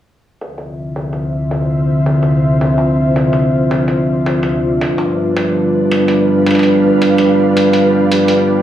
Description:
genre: glitch hop.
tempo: 109 BPM.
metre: 4/4.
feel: swing 61% on 16ths.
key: D dorian.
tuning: A4 = 438 Hz.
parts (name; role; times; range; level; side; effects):
dark analog pad; sustained chords; 0.4-8.6 s; D3 to E5; -12 LUFS; equal; chorus, vintage 12-bit sampler grit.
electronic hi-hat; drums; 0.4-8.4 s; none; -24 LUFS; equal; low-pass filter on hats, low-pass filter on room.
ethereal airy pad; texture; 1.2-8.6 s; D4 to F5; -21 LUFS; equal; ensemble chorus, built-in reverb.
room: light reverb.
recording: small room reverb.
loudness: -11 LUFS.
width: side -11 dB against mid.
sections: 0.4-8.6 A section.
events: fade-in on ambient pad 0.4-8.6; filter sweep on drum 0.4-8.6.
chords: 0.4 Dm9; 4.8 G7.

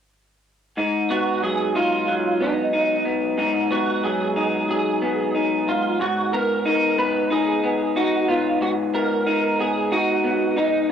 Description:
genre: indie pop.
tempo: 92 BPM.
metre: 4/4.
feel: swing 55% on 16ths.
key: G# dorian.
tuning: A4 = 442 Hz.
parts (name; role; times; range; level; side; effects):
electric guitar through a small old amp; accompaniment; 0.8-10.9 s; G#2 to D#4; -21 LUFS; left 2 dB; wide subtle chorus, vibrato effect, cassette tape.
electric guitar through a small old amp; melody; 1.1-10.9 s; D#4 to B4; -23 LUFS; right 4 dB; ensemble chorus, analog delay.
room: moderate small room reverb, RT60 0.5 s.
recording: home recording on cassette, faint mains hum.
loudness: -19 LUFS.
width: side -8 dB against mid.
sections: 0.8-6.0 A section; 6.0-10.9 B section.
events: none.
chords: 0.8 G#m7; 5.7 N.C.; 6.0 G#m7.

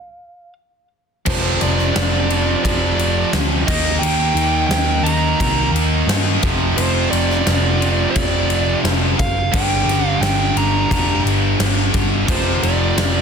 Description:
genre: hard rock.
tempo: 87 BPM.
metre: 4/4.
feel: straight.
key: unclear.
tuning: A4 = 440 Hz.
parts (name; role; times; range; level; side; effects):
biting lead guitar; melody; 0.0-13.2 s; C5 to Bb5; -22 LUFS; right 3 dB; overdrive, digital delay.
distorted electric guitar; riff; 1.3-13.2 s; F2 to Eb4; -23 LUFS; right 14 dB; overdrive.
overdriven semi-hollow guitar; riff; 1.3-13.2 s; F2 to Eb4; -25 LUFS; left 14 dB; none.
scooped high-gain guitar; riff; 1.3-13.2 s; F2 to Eb4; -23 LUFS; equal; distortion.
hollow-body short-scale picked electric bass; bass; 1.3-13.2 s; F1 to G2; -20 LUFS; left 1 dB; none.
huge arena drum kit; drums; 1.3-13.1 s; crash cymbal, kick drum, snare drum; -21 LUFS; left 2 dB; none.
room: light reverb.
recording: dense, heavily limited modern master.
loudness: -15 LUFS.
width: side -6 dB against mid.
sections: 0.0-1.3 A section; 1.3-13.2 B section.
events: stop 0.0-1.3.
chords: 0.0 G5; 0.6 N.C.; 1.3 F5; 3.7 Eb; 6.4 F5; 9.5 Gm; 12.3 F5.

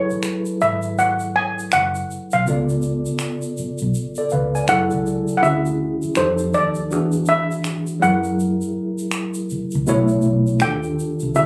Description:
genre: R&B, neo-soul.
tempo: 81 BPM.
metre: 4/4.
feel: swing 62% on 16ths.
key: F# minor.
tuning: A4 = 440 Hz.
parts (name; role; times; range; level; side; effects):
steel pan; melody; 0.0-11.5 s; C5 to G#5; -21 LUFS; equal; slapback echo.
tine electric piano; accompaniment; 0.0-11.5 s; B2 to G#5; -24 LUFS; equal; overdrive.
vintage muted fingered electric bass; bass; 0.1-11.5 s; F#1 to G#2; -26 LUFS; equal; none.
egg shaker and finger snaps; percussion; 0.1-11.5 s; none; -33 LUFS; equal; none.
room: light reverb.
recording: recorded on a phone in the room, club reverb, compression.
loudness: -20 LUFS.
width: mono.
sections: 0.0-5.4 A section; 5.4-11.5 B section.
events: none.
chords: 0.0 F#m11; 2.5 C#7b9b13; 4.7 F#m9; 5.4 Dmaj9#11; 6.2 F9; 6.9 E9; 8.0 F#9; 9.9 B9sus4; 10.6 D#maj9#11.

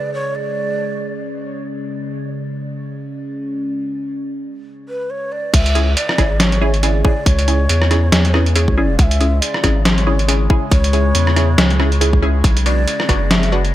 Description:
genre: deep dubstep.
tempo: 139 BPM.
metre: 4/4.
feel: swing 57% on 16ths, half-time.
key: C# phrygian.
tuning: A4 = 440 Hz.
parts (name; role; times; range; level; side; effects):
breathy mellow shakuhachi; melody; 0.0-1.2, 4.9-13.7 s; B4 to F#5; -24 LUFS; equal; vintage 12-bit sampler grit, dub echo.
overtone-sweeping drone; sustained chords; 0.0-13.7 s; C#3 to G#3; -26 LUFS; left 1 dB; chorus, built-in reverb, phaser.
saturated sub bass; bass; 5.5-13.7 s; F#1 to E2; -16 LUFS; equal; none.
electronic kick drum; drums; 5.5-13.2 s; none; -14 LUFS; equal; none.
trip hop sampler-style drum kit; drums; 5.5-13.7 s; crash cymbal, hi-hat, rim click, snare drum; -18 LUFS; equal; overdrive.
filtered dub chord stab; stabs; 5.8-13.6 s; B3 to G#4; -22 LUFS; equal; phaser, dub echo.
room: little or no reverb.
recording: none.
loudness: -14 LUFS.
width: side -14 dB against mid.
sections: 0.0-5.5 A section; 5.5-13.7 B section.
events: drop 5.5-13.7.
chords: 0.0 C#5; 5.5 C#m; 12.4 Bm.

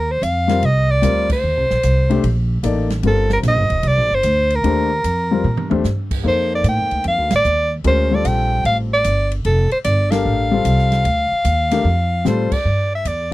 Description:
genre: modal jazz.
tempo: 150 BPM.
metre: 4/4.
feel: swing 67% on 8ths.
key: unclear.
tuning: A4 = 440 Hz.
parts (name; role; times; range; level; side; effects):
breathy soprano saxophone; melody; 0.0-13.3 s; A4 to G5; -18 LUFS; equal; none.
upright bass; bass; 0.0-13.3 s; Eb1 to Bb2; -18 LUFS; right 1 dB; none.
swinging big-band drum kit; drums; 0.2-13.2 s; crash cymbal, hi-hat, kick drum, ride cymbal, snare drum, toms; -28 LUFS; right 2 dB; none.
warm grand piano; accompaniment; 0.5-13.3 s; G3 to D5; -21 LUFS; left 5 dB; none.
room: light reverb.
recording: dry, close 1970s-style studio recording.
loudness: -15 LUFS.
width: side -17 dB against mid.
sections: 0.0-12.7 A section.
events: band accent 1.2, 7.3, 10.1, 12.5; drum fill 5.4-5.8, 12.3-12.7.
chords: 0.0 Cm11; 6.2 Dm; 12.7 G5.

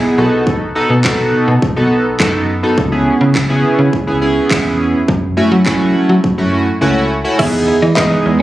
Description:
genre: dance-pop.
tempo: 104 BPM.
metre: 4/4.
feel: straight.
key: E major.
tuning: A4 = 440 Hz.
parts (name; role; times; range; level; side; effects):
chorused polysynth; accompaniment; 0.0-8.3 s; A3 to A4; -14 LUFS; right 1 dB; none.
slap-like FM bass; bass; 0.0-8.4 s; B1 to F#3; -16 LUFS; equal; sidechain pumping.
house drum kit; drums; 0.5-8.1 s; crash cymbal, handclaps, kick drum; -18 LUFS; equal; none.
granular cloud pad; sustained chords; 8.0-8.4 s; E3 to G#4; -18 LUFS; right 3 dB; built-in reverb, sidechain pumping.
twelve-string electric guitar; riff; 7.4-8.4 s; B3 to E4; -20 LUFS; right 1 dB; wide subtle chorus.
bright concert grand piano; melody; 8.0-8.4 s; D#5; -17 LUFS; equal; none.
room: light reverb, digital ambience.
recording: recorded on a phone in the room, club reverb.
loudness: -11 LUFS.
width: side -15 dB against mid.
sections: 0.0-7.4 A section; 7.4-8.4 B section.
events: silent gap 6.8-7.4.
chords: 0.2 B7; 2.8 C#m7; 5.1 F#m7; 7.4 Emaj7.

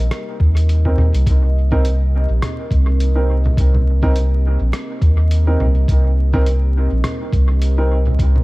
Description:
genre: ambient dub.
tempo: 104 BPM.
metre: 4/4.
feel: swing 57% on 16ths.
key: C minor.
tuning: A4 = 444 Hz.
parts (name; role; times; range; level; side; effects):
deep dark ambient pad; sustained chords; 0.0-8.4 s; C4 to Eb5; -28 LUFS; equal; chorus, built-in reverb.
soft dub sub bass; bass; 0.0-8.4 s; Bb1 to Eb2; -14 LUFS; equal; none.
lo-fi sampler-style drum kit; drums; 0.1-8.4 s; congas, hi-hat, rim click; -26 LUFS; equal; studio reverb, dub echo.
electronic kick drum; drums; 0.4-8.3 s; none; -17 LUFS; equal; studio reverb.
dark upright piano; stabs; 0.9-8.0 s; C4 to Bb4; -25 LUFS; right 1 dB; vintage 12-bit sampler grit, dub echo.
room: digital ambience.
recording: vinyl crackle.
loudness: -14 LUFS.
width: side -21 dB against mid.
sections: 0.0-1.3 A section; 1.3-8.4 B section.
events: none.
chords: 0.0 Cm7.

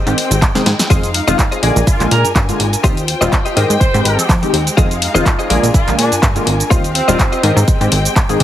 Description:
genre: filtered disco house.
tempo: 124 BPM.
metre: 4/4.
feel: swing 55% on 16ths.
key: unclear.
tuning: A4 = 440 Hz.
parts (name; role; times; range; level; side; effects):
dark symphonic string section; sustained chords; 0.0-8.4 s; Ab3 to Ab5; -22 LUFS; left 2 dB; sidechain pumping.
direct-recorded clean electric guitar; riff; 0.0-8.3 s; F4 to Eb5; -20 LUFS; left 4 dB; analog chorus, sidechain pumping.
funky polysynth comp; accompaniment; 0.1-8.4 s; D3 to Bb4; -19 LUFS; left 1 dB; chorus, phaser, vintage 12-bit sampler grit, sidechain pumping.
plucky analog bass; bass; 0.1-8.4 s; Eb1 to F3; -16 LUFS; equal; sidechain pumping.
house drum kit; drums; 0.1-8.4 s; handclaps, hi-hat, shaker, snare drum; -18 LUFS; equal; sidechain pumping on hats, sidechain pumping on perc.
electronic kick drum; drums; 0.4-8.3 s; none; -14 LUFS; equal; none.
mellow horn section; melody; 1.9-7.4 s; C4 to C5; -21 LUFS; right 2 dB; sidechain pumping, digital delay.
room: light reverb.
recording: heavily compressed radio sound, multiband compression.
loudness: -11 LUFS.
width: side -12 dB against mid.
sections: 0.0-8.4 A section.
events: drum fill 0.5-0.9.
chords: 0.0 Abmaj7; 0.9 Fm7; 1.6 Bb7; 2.8 Eb69; 3.6 Abmaj7; 4.8 Fm7; 5.5 Bb7; 6.7 Eb69; 7.4 Abmaj7.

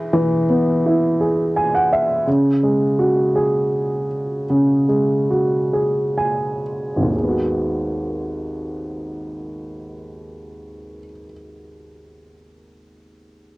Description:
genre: pop.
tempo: 40-57 BPM (dotted quarters).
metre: 6/8.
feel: straight.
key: G# minor.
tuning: A4 = 440 Hz.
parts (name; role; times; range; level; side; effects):
warm upright piano; accompaniment; 0.0-13.6 s; G#1 to G#5; -18 LUFS; equal; cassette tape.
room: moderate booth ambience, RT60 0.2 s.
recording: home recording on cassette.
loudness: -17 LUFS.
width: side -21 dB against mid.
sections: 0.0-7.1 A section; 7.1-13.1 B section.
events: upright piano fill 1.2-2.3, 5.7-7.1; slowing down 2.3-7.1.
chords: 0.0 E; 2.3 C#sus4; 7.1 G#m7.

